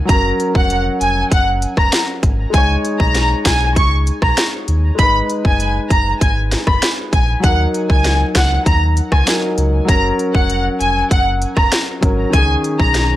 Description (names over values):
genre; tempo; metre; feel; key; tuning
dancehall; 98 BPM; 4/4; straight; unclear; A4 = 440 Hz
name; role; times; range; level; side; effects
warm concert grand piano; accompaniment; 0.0-13.2 s; Eb3 to Db5; -21 LUFS; left 1 dB; none
warm symphonic violin section; melody; 0.1-13.0 s; Gb5 to Db6; -18 LUFS; equal; tape echo
sub bass with octave; bass; 0.1-13.1 s; F1 to Eb2; -18 LUFS; equal; none
island pop drum kit; drums; 0.1-13.1 s; hi-hat, kick drum, rim click, snare drum; -16 LUFS; equal; overdrive
room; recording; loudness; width
digital ambience; dry, gritty hardware recording, cassette tape; -13 LUFS; side -14 dB against mid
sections
0.0-13.2 A section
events
none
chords
0.1 Gb; 2.5 Dbsus2; 5.0 Abm; 7.4 Ebm; 9.9 Gb; 12.3 Dbsus2